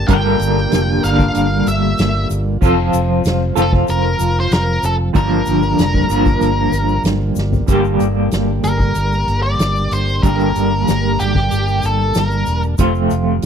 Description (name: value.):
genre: psychedelic rock.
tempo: 95 BPM.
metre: 4/4.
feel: straight.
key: G minor.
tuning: A4 = 442 Hz.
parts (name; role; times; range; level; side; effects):
octave-fuzz lead guitar; melody; 0.0-12.6 s; G4 to G5; -20 LUFS; equal; distortion, slapback echo.
overdriven combo organ; sustained chords; 0.0-13.5 s; F3 to A5; -27 LUFS; right 5 dB; none.
semi-hollow electric guitar; riff; 0.0-13.5 s; F2 to Bb4; -18 LUFS; right 1 dB; tremolo, double-tracked left and right.
fingered electric bass; bass; 0.0-13.5 s; E1 to G1; -18 LUFS; equal; none.
soft-mallet drum kit; drums; 0.1-13.5 s; crash cymbal, hi-hat, kick drum, snare drum, toms; -20 LUFS; equal; none.
egg shaker; percussion; 0.1-13.5 s; none; -36 LUFS; left 17 dB; none.
room: little or no reverb.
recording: dry, close 1970s-style studio recording.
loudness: -13 LUFS.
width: side -7 dB against mid.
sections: 0.0-7.7 A section; 7.7-13.5 B section.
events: drum fill 7.4-7.7.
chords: 0.0 Gm; 2.6 F; 5.1 Gm7; 7.7 Gm; 12.8 F.